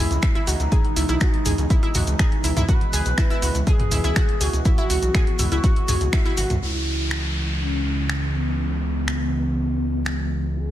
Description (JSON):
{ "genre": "melodic techno", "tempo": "122 BPM", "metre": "4/4", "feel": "straight", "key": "C# minor", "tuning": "A4 = 441 Hz", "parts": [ { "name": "expressive portamento lead", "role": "melody", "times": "0.0-10.7 s", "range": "B3 to B4", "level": "-28 LUFS", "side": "left 1 dB", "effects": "wide subtle chorus, sidechain pumping, ping-pong delay" }, { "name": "sweeping resonant pad", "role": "sustained chords", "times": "0.0-10.7 s", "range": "B2 to G#3", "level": "-31 LUFS", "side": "right 2 dB", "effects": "chorus, sidechain pumping" }, { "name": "analog pluck", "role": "arpeggios", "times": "0.0-6.4 s", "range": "E4 to G#5", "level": "-29 LUFS", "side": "right 1 dB", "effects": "chorus, sidechain pumping, digital delay" }, { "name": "gritty driven synth bass", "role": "bass", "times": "0.0-10.7 s", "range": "G#1 to C#2", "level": "-24 LUFS", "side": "equal", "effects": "sidechain pumping" }, { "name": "punchy analog drum machine", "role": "drums", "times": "0.1-10.2 s", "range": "finger snaps, hi-hat, toms", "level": "-27 LUFS", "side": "right 1 dB", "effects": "none" }, { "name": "maracas", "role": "percussion", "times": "0.1-6.6 s", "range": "none", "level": "-31 LUFS", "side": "left 2 dB", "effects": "none" }, { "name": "electronic kick drum", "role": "drums", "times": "0.2-6.2 s", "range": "none", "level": "-20 LUFS", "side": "equal", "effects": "none" }, { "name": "downlifter", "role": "sound effects", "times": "6.6-10.6 s", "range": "none", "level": "-32 LUFS", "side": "equal", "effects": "none" } ], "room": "little or no reverb", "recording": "none", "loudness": "-19 LUFS", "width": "side -13 dB against mid", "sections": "0.0-6.6 A section; 6.6-10.7 B section", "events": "drop 0.0-6.6; band accent 6.1; filter sweep on analog synth lead 6.6-10.7; filter sweep on analog synth pad 6.6-10.7", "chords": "0.0 E; 6.6 C#m" }